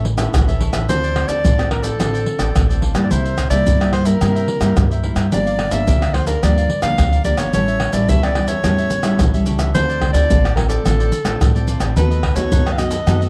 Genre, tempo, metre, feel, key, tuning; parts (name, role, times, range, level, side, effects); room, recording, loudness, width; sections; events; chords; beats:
samba and choro; 108 BPM; 4/4; straight; D minor; A4 = 441 Hz
cavaquinho; accompaniment; 0.0-13.3 s; D#4 to F5; -32 LUFS; equal
nylon-string guitar; accompaniment; 0.0-13.3 s; G2 to A4; -25 LUFS; equal
upright bass; bass; 0.0-13.3 s; G1 to G2; -22 LUFS; equal
pandeiro, maracas, tamborim and surdo; percussion; 0.0-13.3 s; -21 LUFS; equal
breathy soprano saxophone; melody; 0.9-13.2 s; A4 to F5; -24 LUFS; equal
light reverb; dry, close 1970s-style studio recording; -17 LUFS; mono
0.9-13.3 A section
0.0 A; 0.9 Dm7; 3.1 C7; 5.3 Gm7; 7.5 A7; 9.7 Dm7; 12.0 B7/D#
0.34 | 0.89 1.45 2.00 2.56 | 3.11 3.66 4.22 4.77 | 5.32 5.88 6.43 6.98 | 7.54 8.09 8.64 9.20 | 9.75 10.30 10.85 11.41 | 11.96 12.52 13.07